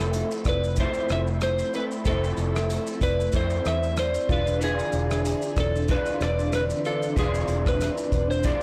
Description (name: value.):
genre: indie pop, bedroom pop.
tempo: 94 BPM.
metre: 4/4.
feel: swing 55% on 16ths.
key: unclear.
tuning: A4 = 439 Hz.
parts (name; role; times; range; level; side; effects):
electric slide guitar; melody; 0.0-8.6 s; G#4 to E5; -31 LUFS; equal; analog chorus.
vibraphone with medium mallets; second line; 0.0-8.3 s; B4 to E5; -37 LUFS; equal; analog chorus, digital delay.
electric guitar through a small old amp; accompaniment; 0.0-8.6 s; E3 to F4; -32 LUFS; equal; ensemble chorus, vibrato effect.
ensemble organ-string; sustained chords; 0.0-8.6 s; D3 to E4; -39 LUFS; equal; none.
vintage muted fingered electric bass; bass; 0.0-8.5 s; E1 to F2; -30 LUFS; equal; tube saturation.
unplugged drum kit; drums; 0.0-8.6 s; hi-hat, kick drum, rim click, shaker; -32 LUFS; equal; soft clipping on snare.
room: light reverb.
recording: blown-out, overdriven recording, overdrive.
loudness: -25 LUFS.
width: mono.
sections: 0.0-8.6 A section.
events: none.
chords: 0.0 Fmaj7; 4.3 E7b9.